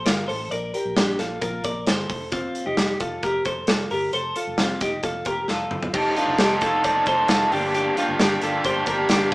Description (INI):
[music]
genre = jangly indie pop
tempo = 133 BPM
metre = 4/4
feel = straight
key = unclear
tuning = A4 = 441 Hz
[part]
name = twelve-string electric guitar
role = arpeggios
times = 0.0-9.3 s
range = C4 to D5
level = -24 LUFS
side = equal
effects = none
[part]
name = vintage muted fingered electric bass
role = bass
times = 0.0-9.3 s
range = F1 to Bb1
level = -36 LUFS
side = equal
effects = none
[part]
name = big rock drum kit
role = drums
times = 0.1-9.3 s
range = crash cymbal, hi-hat, kick drum, snare drum, toms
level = -24 LUFS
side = equal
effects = none
[part]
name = biting overdriven guitar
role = accompaniment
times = 5.9-9.3 s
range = G2 to A4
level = -21 LUFS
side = right 1 dB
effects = none
[sound]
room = moderate studio reverb, RT60 0.8 s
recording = band playing live in one room, small speaker sound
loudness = -20 LUFS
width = side -22 dB against mid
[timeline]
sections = 0.0-5.9 A section; 5.9-9.3 B section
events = drum fill 5.5-5.9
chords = 0.0 Bb; 2.1 Fadd9; 5.9 F7; 7.5 Gm7